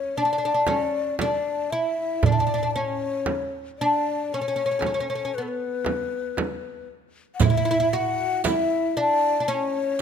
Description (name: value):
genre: Turkish makam ensemble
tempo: 116 BPM (eighths)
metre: 10/8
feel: straight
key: unclear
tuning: A4 = 440 Hz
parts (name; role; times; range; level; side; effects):
- oud; melody; 0.0-10.0 s; B3 to F#4; -25 LUFS; right 2 dB; none
- breathy mellow ney; second line; 0.0-10.0 s; A4 to F#5; -26 LUFS; left 7 dB; none
- darbuka; percussion; 0.2-9.6 s; none; -26 LUFS; right 7 dB; none
- frame drum; percussion; 0.7-8.7 s; none; -27 LUFS; right 4 dB; none
- riq; percussion; 7.4-10.0 s; none; -33 LUFS; right 10 dB; none
room: light reverb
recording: close, detailed microphones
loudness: -22 LUFS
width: side -7 dB against mid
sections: 0.0-10.0 A section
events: none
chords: none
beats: 0.16 0.68 1.20 1.72 | 2.23 2.75 3.27 3.79 4.30 4.82 5.34 5.86 6.38 6.90 | 7.41 7.93 8.45 8.97 9.49 10.00